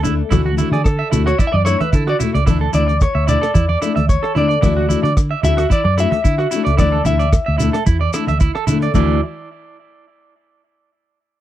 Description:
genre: highlife guitar band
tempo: 111 BPM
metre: 4/4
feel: swing 54% on 16ths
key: D major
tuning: A4 = 441 Hz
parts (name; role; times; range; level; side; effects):
- picked steel-string acoustic guitar; accompaniment; 0.0-9.2 s; E3 to F#4; -21 LUFS; left 8 dB; none
- electric guitar at the edge of break-up; arpeggios; 0.0-9.2 s; E4 to E5; -22 LUFS; right 9 dB; none
- vintage muted fingered electric bass; bass; 0.0-9.2 s; C#2 to D3; -18 LUFS; equal; none
- maracas; percussion; 0.0-9.2 s; none; -32 LUFS; left 12 dB; none
- congas; percussion; 0.1-9.2 s; none; -24 LUFS; right 3 dB; none
- cloth-damped thuddy drum kit; drums; 0.3-9.1 s; hi-hat, kick drum, rim click; -17 LUFS; equal; none
- clean electric guitar; melody; 0.7-7.8 s; G#4 to E5; -20 LUFS; left 3 dB; none
room: little or no reverb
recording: dry, close 1970s-style studio recording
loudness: -13 LUFS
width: side -13 dB against mid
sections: 0.3-8.9 A section; 8.9-11.1 B section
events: clean electric guitar solo 0.3-8.9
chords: 0.3 Dadd9; 2.5 Asus4/D; 4.6 Dadd9; 6.8 Asus4/D; 8.9 Dadd9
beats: | 0.31 0.85 1.39 1.93 | 2.47 3.01 3.55 4.09 | 4.63 5.17 5.71 6.25 | 6.79 7.33 7.87 8.41 | 8.95

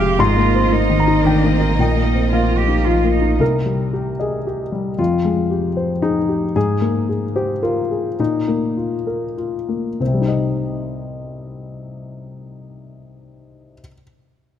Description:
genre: neoclassical piano and strings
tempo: 94-117 BPM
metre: 3/4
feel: rubato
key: C minor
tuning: A4 = 438 Hz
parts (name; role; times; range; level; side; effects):
- rich cello; second line; 0.0-3.4 s; C4 to G4; -22 LUFS; right 7 dB; none
- warm grand piano; accompaniment; 0.0-14.0 s; C2 to F6; -18 LUFS; left 3 dB; none
- rich chamber string section; sustained chords; 0.0-3.4 s; Ab3 to F5; -25 LUFS; right 2 dB; none
- pure sine sub bass; bass; 0.0-3.4 s; F1 to Bb1; -20 LUFS; right 1 dB; none
room: moderate concert hall reverb, RT60 2.3 s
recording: none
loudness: -16 LUFS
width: side -9 dB against mid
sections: 0.0-3.4 A section; 3.4-10.0 B section; 10.0-13.8 C section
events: slowing down 5.8-10.0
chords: 0.2 Abadd9; 1.8 Bbsus4; 3.4 Cm; 5.0 Fmadd9; 6.6 Abadd9; 8.2 Bbsus4; 10.0 Cm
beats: | 0.19 0.71 1.24 | 1.78 2.31 2.85 | 3.40 3.94 4.46 | 4.99 5.51 6.02 | 6.55 7.08 7.63 | 8.19 8.77 9.37 | 10.00 10.63 11.26 | 11.89 12.52 13.15

